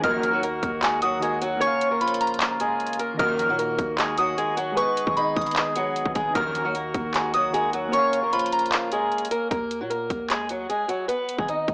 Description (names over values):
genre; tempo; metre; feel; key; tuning
hip hop, trap; 152 BPM; 4/4; half-time; Eb minor; A4 = 440 Hz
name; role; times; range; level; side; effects
fingerpicked swing-style acoustic guitar; melody; 0.0-11.7 s; F3 to Eb5; -28 LUFS; equal; low-pass filter, tape echo
soft synth bell; second line; 0.0-9.5 s; Bb5 to F6; -28 LUFS; equal; chorus, tape echo
soft electric-piano-like synth keys; accompaniment; 0.0-9.5 s; Eb3 to F5; -34 LUFS; equal; chorus, low-pass filter
warm brass ensemble; sustained chords; 0.0-9.5 s; Db3 to Ab4; -37 LUFS; equal; none
sync-sweep polysynth; stabs; 0.0-0.3, 3.2-3.5, 6.4-6.6 s; Bb1 to Eb3; -34 LUFS; equal; chorus
growling 808-style bass; bass; 0.0-11.7 s; Ab1 to Bb2; -38 LUFS; equal; none
trap drum kit; drums; 0.0-11.7 s; handclaps, hi-hat, kick drum; -30 LUFS; equal; none
room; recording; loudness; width
light reverb, digital ambience; dry, gritty hardware recording, small speaker sound; -24 LUFS; mono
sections
0.0-9.5 A section; 9.5-11.7 B section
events
kick muted 1.6-3.2, 7.9-9.5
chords
0.0 Ebm; 1.6 Bbm; 3.2 Ebm; 4.8 Abm; 6.4 Ebm; 7.9 Bbm; 9.5 Ebm; 11.1 Abm